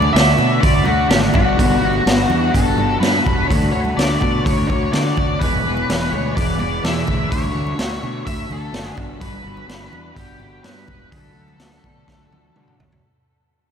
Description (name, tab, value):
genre	psychedelic rock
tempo	126 BPM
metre	4/4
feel	straight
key	unclear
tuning	A4 = 440 Hz
part	octave-fuzz lead guitar	melody	0.0-12.7 s	F#4 to E5	-21 LUFS	left 1 dB	distortion, diffuse ambient delay
part	mellow electric guitar	riff	0.0-13.0 s	E2 to G#4	-21 LUFS	equal	flanger, double-tracked left and right
part	fuzz fingered electric bass	bass	0.0-13.0 s	E1 to D3	-23 LUFS	equal	overdrive
part	congas	percussion	0.0-12.9 s	none	-31 LUFS	right 5 dB	none
part	raw garage drum kit	drums	0.2-13.0 s	hi-hat, kick drum, snare drum, toms	-20 LUFS	equal	none
room	moderate huge ambient reverb, RT60 9.1 s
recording	dreamy mix soaked in reverb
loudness	-15 LUFS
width	side -7 dB against mid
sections	0.0-13.0 A section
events	fade-out 0.0-13.0; drum fill 12.1-13.0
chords	0.0 D; 1.3 Gmaj7; 3.5 D; 5.4 E; 7.3 D; 9.0 Gmaj7; 11.1 D